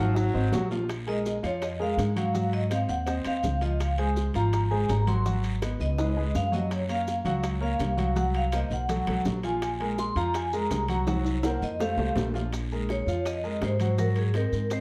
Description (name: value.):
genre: Afro-Cuban jazz.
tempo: 165 BPM.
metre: 4/4.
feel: straight.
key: Bb minor.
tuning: A4 = 440 Hz.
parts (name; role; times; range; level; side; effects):
warm baritone saxophone; second line; 0.0-0.7 s; F3 to Gb3; -35 LUFS; equal; none.
warm baby grand piano; accompaniment; 0.0-14.8 s; F3 to Gb5; -33 LUFS; equal; none.
upright bass; bass; 0.0-14.8 s; Ab1 to Ab2; -31 LUFS; equal; none.
bongos; percussion; 0.2-14.8 s; none; -41 LUFS; equal; none.
guiro; percussion; 0.2-14.8 s; none; -49 LUFS; equal; none.
maracas; percussion; 0.2-14.8 s; none; -51 LUFS; equal; none.
timbales; percussion; 0.2-14.8 s; none; -39 LUFS; equal; none.
vibraphone with medium hard mallets; melody; 1.1-14.8 s; Ab4 to C6; -34 LUFS; equal; none.
room: moderate large studio reverb, RT60 0.9 s.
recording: dark, warm production.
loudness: -27 LUFS.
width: mono.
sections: 0.9-12.5 A section; 12.5-14.8 B section.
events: drum fill 0.0-0.9, 6.0-6.7, 11.1-12.5; vibraphone solo 0.9-12.5.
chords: 0.2 Ab7; 0.9 Bb7sus4; 2.3 Ab6; 3.8 Dbmaj7; 5.3 Abm7; 6.0 Dbsus2; 6.7 Gbmaj7; 8.2 Ebm69; 8.9 B5; 9.6 Bbsus2; 11.1 Cm7b5; 11.8 F; 12.5 Bbm11; 14.0 Ab9.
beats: 0.17 0.53 | 0.89 1.26 1.62 1.98 | 2.35 2.71 3.08 3.44 | 3.80 4.17 4.53 4.89 | 5.26 5.62 5.98 6.35 | 6.71 7.07 7.44 7.80 | 8.16 8.53 8.89 9.25 | 9.62 9.98 10.34 10.71 | 11.07 11.44 11.80 12.16 | 12.53 12.89 13.25 13.62 | 13.98 14.35 14.71.